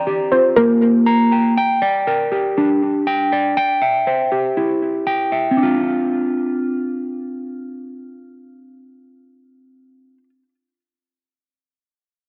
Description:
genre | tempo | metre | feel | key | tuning
hip hop | 120 BPM | 4/4 | half-time | D minor | A4 = 440 Hz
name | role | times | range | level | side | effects
warbly dusty pluck | melody | 0.0-1.5 s | Bb4 to D5 | -19 LUFS | equal | chorus, tape echo
mellow electric guitar | arpeggios | 0.0-10.3 s | Bb3 to Bb5 | -19 LUFS | equal | tape echo
room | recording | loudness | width
wet spring reverb, RT60 2.4 s | echo-heavy mix | -17 LUFS | mono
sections
0.0-5.6 A section; 5.6-9.6 B section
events
none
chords
0.0 Gm7; 1.6 Bb6; 3.6 C; 5.6 Dm7

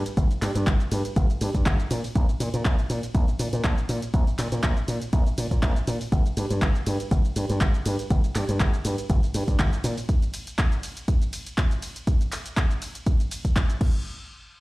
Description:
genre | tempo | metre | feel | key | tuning
filtered disco house | 121 BPM | 4/4 | swing 55% on 16ths | G minor | A4 = 441 Hz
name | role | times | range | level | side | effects
slap bass with an envelope filter | bass | 0.0-9.9 s | G1 to Bb2 | -26 LUFS | equal | tube saturation, sidechain pumping
punchy analog drum machine | drums | 0.1-13.9 s | crash cymbal, handclaps, hi-hat, ride cymbal, shaker | -33 LUFS | equal | overdrive
electronic kick drum | drums | 0.2-13.9 s | none | -22 LUFS | equal | overdrive
room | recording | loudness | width
digital ambience | played on a big sound system in a bare room, large studio reverb | -22 LUFS | side -20 dB against mid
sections
0.0-14.1 A section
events
drop 0.0-14.1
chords
none

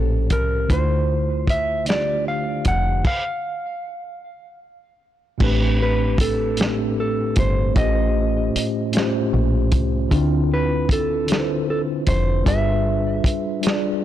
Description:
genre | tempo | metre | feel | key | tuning
slow six-eight R&B | 51 BPM (dotted quarters) | 6/8 | straight | A minor | A4 = 440 Hz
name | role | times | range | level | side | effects
mellow electric guitar | melody | 0.0-14.0 s | A4 to F#5 | -25 LUFS | right 1 dB | none
mellow tine electric piano | accompaniment | 0.0-14.0 s | A2 to D5 | -23 LUFS | equal | medium stereo tremolo
deep dub fingered electric bass | bass | 0.0-13.3 s | F1 to D2 | -22 LUFS | equal | transformer saturation
warm soul drum kit | drums | 0.3-13.8 s | crash cymbal, hi-hat, kick drum, snare drum | -22 LUFS | equal | none
room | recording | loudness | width
little or no reverb | blown-out, overdriven recording, overdrive | -18 LUFS | side -12 dB against mid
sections
0.0-5.4 A section; 5.4-14.0 B section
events
stop 3.1-5.4; tine electric piano fill 13.6-14.0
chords
0.0 A7alt; 0.7 Dm7; 3.1 N.C.; 5.4 Am11; 7.8 A7alt; 10.1 Dm7; 12.5 G7b9

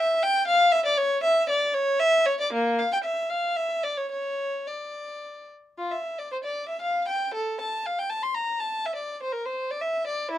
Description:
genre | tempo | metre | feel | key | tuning
classical, baroque-style suite movement for unaccompanied violin | 105-122 BPM | 3/4 | rubato | D minor | A4 = 440 Hz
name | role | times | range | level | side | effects
warm violin | solo | 0.0-10.4 s | Bb3 to C6 | -24 LUFS | equal | none
room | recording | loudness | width
light reverb | dark, warm production | -23 LUFS | side -12 dB against mid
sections
0.0-5.8 A section; 5.8-10.4 A section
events
none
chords
none

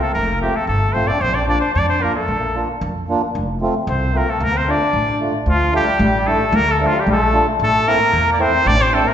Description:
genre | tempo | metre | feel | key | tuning
klezmer | 113 BPM | 2/4 | straight | D minor | A4 = 439 Hz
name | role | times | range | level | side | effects
cornet with straight mute | melody | 0.0-9.1 s | F4 to D5 | -18 LUFS | right 1 dB | none
bright trombone | second line | 0.0-9.1 s | F3 to D4 | -22 LUFS | left 3 dB | none
mellow accordion | accompaniment | 0.0-9.1 s | A3 to F4 | -22 LUFS | right 1 dB | none
upright bass | bass | 0.1-9.0 s | F1 to F2 | -21 LUFS | equal | none
room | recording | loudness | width
wet recital hall reverb, RT60 1.8 s | recorded in a church or concert hall, nothing above 7.9 kHz | -15 LUFS | side -9 dB against mid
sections
0.0-5.5 A section; 5.5-9.1 B section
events
none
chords
0.0 F; 1.2 Bb; 3.3 F; 4.4 Dm; 7.6 Am

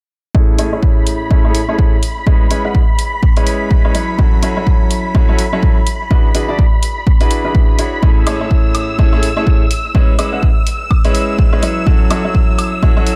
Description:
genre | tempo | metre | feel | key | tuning
piano house | 125 BPM | 4/4 | swing 58% on 16ths | A major | A4 = 437 Hz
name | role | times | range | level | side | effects
analog string pad | sustained chords | 0.7-13.2 s | B5 to E6 | -26 LUFS | equal | ensemble chorus, sidechain pumping
clear upright piano | riff | 0.3-13.1 s | A2 to F#5 | -21 LUFS | equal | sidechain pumping, low-pass filter, analog delay
electronic kick drum | drums | 0.3-12.9 s | none | -14 LUFS | equal | none
electronic hi-hat and woodblock | drums | 0.6-13.2 s | none | -26 LUFS | equal | none
room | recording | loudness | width
light reverb | none | -13 LUFS | mono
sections
0.3-13.2 A section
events
filter sweep on upright piano 0.3-13.2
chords
0.3 Amaj7; 2.0 C#m7/G#; 4.2 F#m7; 6.1 E9; 8.0 Amaj7; 9.7 C#m7/G#; 11.9 F#m7

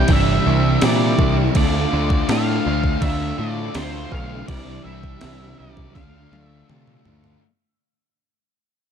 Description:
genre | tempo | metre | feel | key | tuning
rock, shoegaze and dream pop | 82 BPM | 4/4 | straight | D minor | A4 = 440 Hz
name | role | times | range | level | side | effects
octave-fuzz lead guitar | melody | 0.0-6.7 s | C5 to G5 | -28 LUFS | equal | distortion, analog delay
mellow electric guitar | riff | 0.0-7.4 s | C3 to F4 | -25 LUFS | right 10 dB | reverse reverb
overdriven electric guitar | riff | 0.0-7.4 s | C3 to F4 | -28 LUFS | equal | none
thick fuzz guitar | riff | 0.0-7.4 s | C3 to D4 | -26 LUFS | left 12 dB | distortion, lush chorus
growling picked electric bass | bass | 0.0-7.4 s | G1 to C3 | -23 LUFS | equal | overdrive
gated 80s digital drum machine | drums | 0.1-7.4 s | crash cymbal, kick drum, snare drum, toms | -22 LUFS | equal | gated reverb, gated reverb snare
room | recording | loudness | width
little or no reverb | dark, warm production | -16 LUFS | side -8 dB against mid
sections
0.0-7.4 A section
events
fade-out 0.0-7.4; drum fill 6.0-7.4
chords
0.0 Cadd9; 1.6 Dm7; 4.5 Cadd9; 6.0 Dm

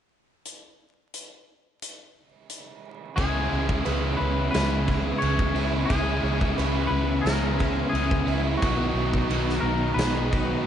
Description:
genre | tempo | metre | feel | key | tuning
rock, shoegaze and dream pop | 88 BPM | 4/4 | straight | unclear | A4 = 440 Hz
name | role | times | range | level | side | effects
huge arena drum kit | drums | 0.5-10.5 s | crash cymbal, hi-hat, kick drum, snare drum | -30 LUFS | equal | none
twangy electric guitar | melody | 3.2-10.7 s | F#4 to C#5 | -31 LUFS | left 2 dB | ping-pong delay
string machine, violas | sustained chords | 3.2-10.7 s | B3 to C#6 | -34 LUFS | right 1 dB | ensemble chorus
picked plugged-in twelve-string acoustic guitar | arpeggios | 3.2-10.7 s | B3 to B4 | -34 LUFS | right 4 dB | lush chorus, ping-pong delay
crunchy overdriven guitar | riff | 3.2-10.7 s | B2 to F#4 | -32 LUFS | right 7 dB | reverse reverb
overdriven semi-hollow guitar | riff | 3.2-10.7 s | B2 to E4 | -30 LUFS | left 6 dB | lush chorus
tight distorted guitar | riff | 3.2-10.7 s | B2 to E4 | -32 LUFS | equal | distortion
vintage muted fingered electric bass | bass | 3.2-10.5 s | B1 to C#2 | -28 LUFS | equal | none
room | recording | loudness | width
moderate plate reverb, RT60 2.4 s | dreamy mix soaked in reverb, vinyl crackle, nothing above 11.0 kHz | -22 LUFS | side -9 dB against mid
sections
0.4-3.2 A section; 3.2-10.7 B section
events
none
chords
0.4 N.C.; 3.2 C#m7; 8.6 Badd9

